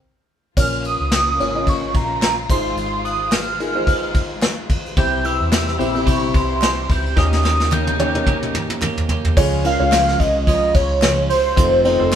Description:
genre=piano-driven pop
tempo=109 BPM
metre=4/4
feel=swing 56% on 16ths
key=unclear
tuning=A4 = 439 Hz
part: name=warm velvety synth lead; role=melody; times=0.6-12.2 s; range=C5 to G6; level=-20 LUFS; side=right 1 dB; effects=chorus
part: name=felt-muted upright piano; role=accompaniment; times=0.6-12.2 s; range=Ab2 to Eb5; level=-24 LUFS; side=left 2 dB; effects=none
part: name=warm studio string section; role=sustained chords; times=0.6-9.3 s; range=C3 to F4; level=-30 LUFS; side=left 2 dB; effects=none
part: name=vintage muted fingered electric bass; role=bass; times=0.6-12.2 s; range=F1 to E2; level=-24 LUFS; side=equal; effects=none
part: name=vintage brush drum kit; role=drums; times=0.6-12.2 s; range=crash cymbal, hi-hat, kick drum, ride cymbal, snare drum, toms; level=-20 LUFS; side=equal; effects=none
part: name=group handclap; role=percussion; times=1.1-12.2 s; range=none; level=-33 LUFS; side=left 1 dB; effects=none
part: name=twelve-string electric guitar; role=riff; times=5.0-12.2 s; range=F2 to G4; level=-25 LUFS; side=right 4 dB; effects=none
room=moderate studio reverb, RT60 0.9 s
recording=band playing live in one room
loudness=-15 LUFS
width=side -9 dB against mid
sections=0.6-9.4 A section; 9.4-12.2 B section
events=stop 0.0-0.6; drum fill 7.2-9.4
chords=0.0 N.C.; 0.6 Bbm; 2.5 Fm7/Ab; 5.0 C; 7.2 Eb7; 9.4 Db; 11.6 F7

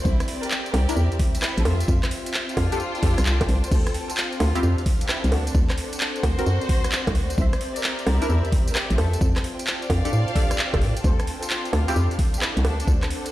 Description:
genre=UK garage, two-step garage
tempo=131 BPM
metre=4/4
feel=swing 66% on 16ths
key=D minor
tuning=A4 = 440 Hz
part: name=soft string machine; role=sustained chords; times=0.0-13.3 s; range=C4 to C5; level=-35 LUFS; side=left 1 dB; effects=ensemble chorus, sidechain pumping
part: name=hollow knocking FM bass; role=bass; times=0.0-13.0 s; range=F1 to A2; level=-21 LUFS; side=equal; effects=none
part: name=clear studio string section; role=texture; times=0.0-13.3 s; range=C4 to A5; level=-34 LUFS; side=equal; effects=sidechain pumping
part: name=rich studio violin section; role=melody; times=0.1-12.8 s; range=D4 to F5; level=-32 LUFS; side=equal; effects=ping-pong delay
part: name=electronic kick drum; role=drums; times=0.1-13.0 s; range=none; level=-22 LUFS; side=equal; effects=overdrive
part: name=garage drum kit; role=drums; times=0.1-13.3 s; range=bongos, crash cymbal, handclaps, hi-hat, rim click, tambourine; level=-27 LUFS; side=right 1 dB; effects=overdrive
part: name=punchy chord stab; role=stabs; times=0.9-12.0 s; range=C4 to Bb4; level=-30 LUFS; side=left 1 dB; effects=chorus, phaser, tape echo
room=digital ambience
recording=played on a big sound system in a bare room, stone room reverb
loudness=-20 LUFS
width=side -15 dB against mid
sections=0.0-13.3 A section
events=none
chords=0.1 C9; 1.7 Dm11; 5.5 D7; 7.4 C9; 9.0 F69; 11.0 Dm11

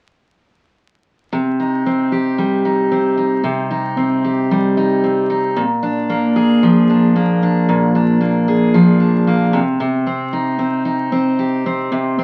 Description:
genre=pop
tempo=113 BPM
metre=4/4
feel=swing 60% on 16ths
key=C minor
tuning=A4 = 440 Hz
part: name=picked steel-string acoustic guitar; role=accompaniment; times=1.3-12.2 s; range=Bb2 to Ab4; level=-16 LUFS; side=equal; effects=none
room=moderate studio reverb, RT60 0.7 s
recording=very old 78 rpm record, vinyl crackle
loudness=-16 LUFS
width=mono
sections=1.3-9.8 A section; 9.8-12.2 B section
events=none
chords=1.3 Cm; 5.6 Bb7; 9.5 N.C.; 9.8 Cm

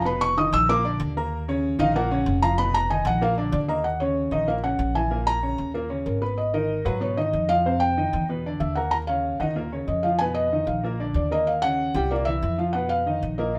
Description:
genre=Afro-Cuban jazz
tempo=189 BPM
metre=4/4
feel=straight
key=Eb minor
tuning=A4 = 440 Hz
part: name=felt-muted upright piano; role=melody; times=0.0-13.6 s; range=Bb4 to Fb6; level=-26 LUFS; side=equal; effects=none
part: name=clear baby grand piano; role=accompaniment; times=0.0-13.6 s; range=Bb2 to Cb6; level=-29 LUFS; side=equal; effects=none
part: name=upright bass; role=bass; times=0.0-13.6 s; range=F1 to Ab2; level=-30 LUFS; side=equal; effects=none
room=moderate studio reverb, RT60 0.8 s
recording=band playing live in one room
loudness=-24 LUFS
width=mono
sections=0.0-3.8 A section; 3.8-13.6 B section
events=felt piano solo 0.0-3.8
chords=0.1 Bmaj9#11/E#; 0.7 Bb; 1.3 Ebm9; 2.6 Abm13/F; 3.2 Bb; 3.8 Ebm7; 5.1 Bbmadd11; 5.7 Eb5; 6.4 Abm9; 7.7 F5; 8.3 E5; 8.9 Ebsus2; 10.2 Abm69 (rootless); 10.8 Bb; 11.5 Ebm7; 12.1 C7; 12.7 Bmaj7#11

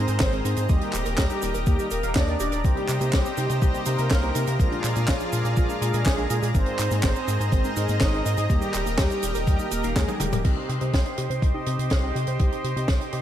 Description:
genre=italo disco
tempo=123 BPM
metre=4/4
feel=straight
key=C minor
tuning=A4 = 440 Hz
part: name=mellow synth brass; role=melody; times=0.0-10.4 s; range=F3 to Eb5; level=-29 LUFS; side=equal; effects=chorus, tape echo
part: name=lush unison pad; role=sustained chords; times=0.0-13.2 s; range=G4 to C6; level=-31 LUFS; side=equal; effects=chorus
part: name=wide unison pluck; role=arpeggios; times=0.0-13.2 s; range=Bb3 to C5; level=-36 LUFS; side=right 4 dB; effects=analog delay
part: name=tine electric piano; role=stabs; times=0.0-13.2 s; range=Ab2 to F5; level=-34 LUFS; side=left 3 dB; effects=analog delay
part: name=round analog bass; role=bass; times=0.0-13.2 s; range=Eb1 to C3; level=-27 LUFS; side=equal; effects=tube saturation
part: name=tight funk drum kit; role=drums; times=0.1-13.2 s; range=cabasa, crash cymbal, handclaps, hi-hat, snare drum, toms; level=-30 LUFS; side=equal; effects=none
part: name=electronic kick drum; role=drums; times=0.2-13.0 s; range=none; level=-23 LUFS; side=equal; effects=none
room=light reverb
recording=none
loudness=-21 LUFS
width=side -11 dB against mid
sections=0.0-10.4 A section; 10.4-13.2 B section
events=drum fill 10.1-10.4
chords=0.0 Abadd9; 0.7 Eb; 2.6 Cm7; 4.6 Bb7; 6.5 Abadd9; 8.5 Eb; 10.4 Cm

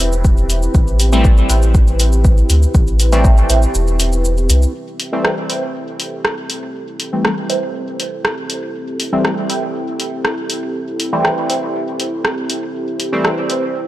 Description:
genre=dub techno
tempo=120 BPM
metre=4/4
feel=straight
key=A minor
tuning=A4 = 440 Hz
part: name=dark analog pad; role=sustained chords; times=0.0-13.9 s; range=C4 to C5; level=-23 LUFS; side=equal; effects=chorus, sidechain pumping
part: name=soft dub sub bass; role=bass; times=0.0-4.7 s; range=E1 to D2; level=-14 LUFS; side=equal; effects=tube saturation, sidechain pumping
part: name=deep house drum kit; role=drums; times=0.0-13.6 s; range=cabasa, hi-hat, rim click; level=-20 LUFS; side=equal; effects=none
part: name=electronic kick drum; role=drums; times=0.2-3.3 s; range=none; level=-12 LUFS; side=equal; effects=none
part: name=resonant sweep polysynth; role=stabs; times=1.1-13.3 s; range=E3 to C4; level=-20 LUFS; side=equal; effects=chorus, phaser, sidechain pumping, dub echo
part: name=filtered dub chord stab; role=riff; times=1.5-13.6 s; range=B4 to G5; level=-26 LUFS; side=right 4 dB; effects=phaser, lush chorus, sidechain pumping, dub echo
room=light reverb, digital ambience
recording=dry, gritty hardware recording, transformer saturation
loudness=-14 LUFS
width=side -15 dB against mid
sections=0.0-4.7 A section; 4.7-13.9 B section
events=break 3.7-4.7; filter sweep on analog polysynth 4.7-13.9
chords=0.0 Am7

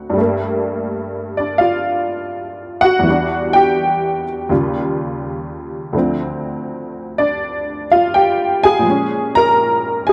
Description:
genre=solo jazz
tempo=83 BPM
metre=4/4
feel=swing 69% on 8ths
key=unclear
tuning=A4 = 440 Hz
part: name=honky-tonk upright piano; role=solo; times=0.0-10.1 s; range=D2 to Bb5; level=-17 LUFS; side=equal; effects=none
room=light reverb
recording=dark, warm production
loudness=-17 LUFS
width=mono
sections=0.2-10.1 A section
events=none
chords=0.2 Gm9; 3.0 Em7; 4.5 Eb9; 5.9 Dm7; 8.8 Bbm7

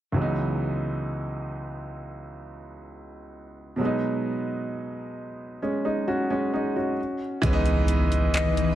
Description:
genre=contemporary R&B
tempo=66 BPM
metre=4/4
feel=straight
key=C# minor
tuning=A4 = 440 Hz
part: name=warm concert grand piano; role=accompaniment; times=0.1-8.8 s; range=C#2 to F#4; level=-26 LUFS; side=right 1 dB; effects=none
part: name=granular cloud pad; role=sustained chords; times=8.1-8.8 s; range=E3 to B4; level=-29 LUFS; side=left 4 dB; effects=built-in reverb, sidechain pumping
part: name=clean 808-style bass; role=bass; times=7.4-8.8 s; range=C#2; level=-24 LUFS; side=equal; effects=none
part: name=smooth R&B drum kit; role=drums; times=7.4-8.8 s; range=handclaps, hi-hat, kick drum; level=-28 LUFS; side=equal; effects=none
part: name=impact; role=sound effects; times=7.6-8.8 s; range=none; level=-32 LUFS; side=left 1 dB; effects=none
part: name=dark baby grand piano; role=melody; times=8.3-8.8 s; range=D#5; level=-28 LUFS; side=left 2 dB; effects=none
room=digital ambience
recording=none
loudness=-24 LUFS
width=side -12 dB against mid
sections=0.2-7.4 A section; 7.4-8.8 B section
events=impact 7.4-8.8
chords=0.2 C#m11; 3.8 G#m7/B; 7.0 N.C.; 7.4 C#m9

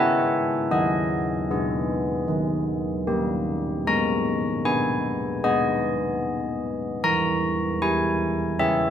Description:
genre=classical, tune for church bells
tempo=76 BPM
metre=4/4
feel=straight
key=unclear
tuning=A4 = 440 Hz
part: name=carillon bells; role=solo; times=0.0-8.9 s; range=D#3 to A#5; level=-22 LUFS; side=equal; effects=none
room=moderate concert hall reverb, RT60 2.2 s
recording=close, detailed microphones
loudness=-22 LUFS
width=side -9 dB against mid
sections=0.0-8.9 A section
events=none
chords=0.0 C#m; 0.7 G#m/D#; 2.3 D#; 3.9 G#m; 7.0 C#m/E

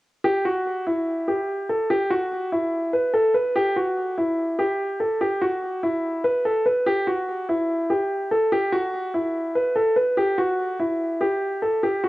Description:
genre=hip hop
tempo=145 BPM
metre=4/4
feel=half-time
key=E minor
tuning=A4 = 441 Hz
part: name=dark concert grand piano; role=melody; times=0.2-12.1 s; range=E4 to B4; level=-20 LUFS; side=equal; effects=low-pass filter, cassette tape, analog delay
room=wet spring reverb, RT60 1.1 s, studio reverb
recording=home recording on cassette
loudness=-21 LUFS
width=side -18 dB against mid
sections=0.2-12.1 A section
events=none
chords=none

